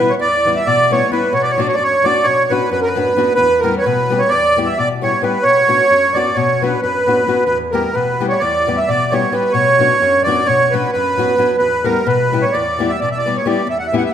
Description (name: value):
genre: balkan folk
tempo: 263 BPM (eighths)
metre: 9/8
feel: straight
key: E dorian sharp4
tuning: A4 = 440 Hz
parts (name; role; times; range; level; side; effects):
- accordion; melody; 0.0-14.1 s; A#4 to F#5; -14 LUFS; right 2 dB; light tremolo tuning
- nylon-string guitar; accompaniment; 0.0-14.1 s; E2 to G4; -19 LUFS; left 5 dB; none
room: wet recital hall reverb, RT60 1.6 s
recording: minimal, uncompressed stereo recording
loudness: -13 LUFS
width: side -9 dB against mid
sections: 0.0-14.1 A section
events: none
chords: 0.0 Em; 1.3 Bm; 3.4 Em; 5.4 Bm; 7.5 Em; 9.5 Bm; 11.6 Em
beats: 0.18 0.41 0.64 0.87 1.10 | 1.33 1.55 1.78 2.01 2.24 2.47 2.70 2.92 3.15 | 3.38 3.61 3.84 4.07 4.29 4.52 4.75 4.98 5.21 | 5.43 5.66 5.89 6.12 6.35 6.58 6.81 7.03 7.26 | 7.49 7.72 7.95 8.18 8.40 8.63 8.86 9.09 9.32 | 9.55 9.78 10.01 10.23 10.46 10.69 10.92 11.15 11.38 | 11.61 11.84 12.06 12.29 12.52 12.75 12.98 13.21 13.44 | 13.67 13.89 14.12